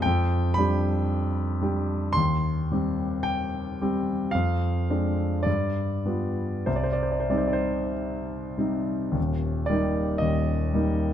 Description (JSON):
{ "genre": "classical, romantic nocturne for solo piano", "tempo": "46-59 BPM", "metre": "4/4", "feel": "rubato", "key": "C minor", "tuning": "A4 = 441 Hz", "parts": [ { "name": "warm concert grand piano", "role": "solo", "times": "0.0-11.1 s", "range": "Eb1 to C6", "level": "-23 LUFS", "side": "equal", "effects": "none" } ], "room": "moderate recital hall reverb, RT60 1.7 s", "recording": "close, detailed microphones", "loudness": "-24 LUFS", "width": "side -10 dB against mid", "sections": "0.0-9.2 A section; 9.2-11.1 B section", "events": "none", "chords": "0.1 G7/F; 2.2 Cm/Eb; 4.3 Dm7b5/F; 5.5 G7; 6.7 Cm; 9.2 Eb" }